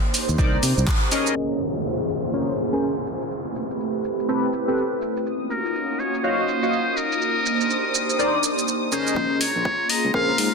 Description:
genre	deep house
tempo	123 BPM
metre	4/4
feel	swing 61% on 16ths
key	Bb dorian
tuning	A4 = 440 Hz
part	airy breathy pad	sustained chords	0.0-10.5 s	A3 to C6	-26 LUFS	equal	chorus, phaser, sidechain pumping
part	deep house drum kit	drums	0.1-10.5 s	crash cymbal, handclaps, hi-hat, shaker	-26 LUFS	right 1 dB	none
part	overdriven fingered electric bass	bass	0.3-0.8, 9.2-10.5 s	Bb1 to C3	-24 LUFS	equal	sidechain pumping, high-pass filter
part	chorused polysynth	stabs	0.4-10.3 s	C4 to F5	-25 LUFS	left 1 dB	sidechain pumping, tape echo
part	electronic kick drum	drums	0.4-1.0, 9.2-10.3 s	none	-23 LUFS	equal	high-pass filter on kick, high-pass filter on room
part	downlifter	sound effects	1.4-5.3 s	none	-31 LUFS	equal	none
part	dark studio violin section	texture	5.3-10.5 s	Bb5 to Eb6	-31 LUFS	left 3 dB	sidechain pumping
part	trumpet with metal mute	melody	5.5-10.5 s	Bb4 to F5	-25 LUFS	equal	tape echo
room	moderate lush hall reverb, RT60 2.1 s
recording	dense, heavily limited modern master, low-pass filter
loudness	-20 LUFS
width	side -4 dB against mid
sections	0.0-1.4 A section; 1.4-9.2 B section; 9.2-10.5 C section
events	band accent 0.9; filter sweep on analog synth pad 1.4-9.2; filter sweep 1.4-9.2; build-up 9.2-10.5; filter sweep on analog polysynth 9.2-10.5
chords	0.0 Cm9; 1.4 Bbm9; 3.3 Am9; 5.3 Ebm9; 7.2 Cm9; 9.2 Bbm9

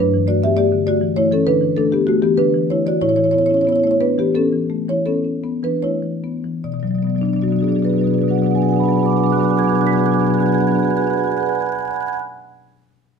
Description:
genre	classical, contemporary piece for solo marimba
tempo	72-104 BPM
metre	5/4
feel	straight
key	B minor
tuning	A4 = 440 Hz
part	marimba with soft mallets	solo	0.0-12.2 s	G2 to B6	-15 LUFS	equal	none
room	moderate stone room reverb, RT60 1.1 s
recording	none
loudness	-15 LUFS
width	side -6 dB against mid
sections	0.0-6.6 A section; 6.6-10.8 B section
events	slowing down 0.0-6.6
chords	0.0 G69; 3.0 Aadd9; 6.6 Bm6

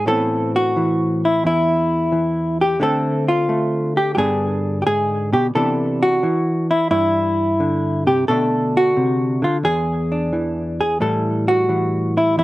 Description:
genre	solo jazz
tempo	88 BPM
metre	4/4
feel	swing 68% on 8ths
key	unclear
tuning	A4 = 440 Hz
part	hollow-body jazz guitar	solo	0.0-12.4 s	E2 to A4	-16 LUFS	equal	none
room	little or no reverb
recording	recorded outdoors, with no room sound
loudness	-16 LUFS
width	side -17 dB against mid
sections	0.1-12.4 A section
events	none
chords	0.1 Amadd9; 2.8 Dm7; 4.2 G; 5.5 Cmaj9; 8.3 Bm7; 9.6 E7; 11.0 A7(no3)

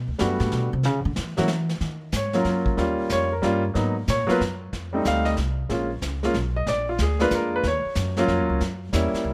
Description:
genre	jazz piano trio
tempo	185 BPM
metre	3/4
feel	swing 64% on 8ths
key	Eb minor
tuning	A4 = 440 Hz
part	upright bass	bass	0.0-9.3 s	Bb1 to E3	-29 LUFS	equal	none
part	warm baby grand piano	melody	0.2-9.3 s	F#3 to F5	-26 LUFS	equal	plate reverb
part	vintage brush drum kit	drums	0.2-9.3 s	brushed snare drum, hi-hat, kick drum, snare drum	-34 LUFS	equal	none
room	light reverb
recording	close, detailed microphones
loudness	-24 LUFS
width	mono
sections	0.0-1.8 A section; 1.8-9.3 A section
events	upright bass solo 0.0-1.8; grand piano solo 1.8-9.3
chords	0.0 Gmaj9; 0.8 F#7(no3); 1.8 Ebm9; 2.8 Eb7; 3.8 Abm9; 4.7 F7; 5.7 Bbm7; 6.7 Bb7; 7.6 Ebm9; 8.6 Gb7b9

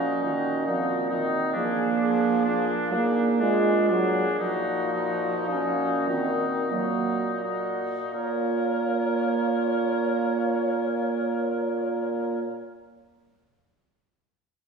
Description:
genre	classical, slow romantic movement for wind quintet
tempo	40-69 BPM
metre	3/4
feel	rubato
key	Bb minor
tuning	A4 = 442 Hz
part	silver concert flute	melody	0.0-12.4 s	Gb4 to Db5	-32 LUFS	left 3 dB	none
part	warm oboe	second line	0.0-12.4 s	D4 to Bb4	-32 LUFS	left 2 dB	none
part	clear French horn	accompaniment	0.0-12.4 s	Eb3 to Bb3	-28 LUFS	right 1 dB	none
part	mellow clarinet	accompaniment	0.0-12.4 s	Bb3 to F4	-29 LUFS	right 4 dB	none
part	mellow bassoon	bass	0.0-12.4 s	Bb2	-30 LUFS	right 2 dB	none
room	wet scoring stage reverb, RT60 1.5 s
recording	recorded in a church or concert hall, small room ambience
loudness	-23 LUFS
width	side -5 dB against mid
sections	0.0-8.1 A section; 8.1-12.2 B section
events	slowing down 0.2-8.1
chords	0.0 Ebm/Bb; 1.6 Bb7; 4.4 Ebm/Bb; 8.1 Bbm

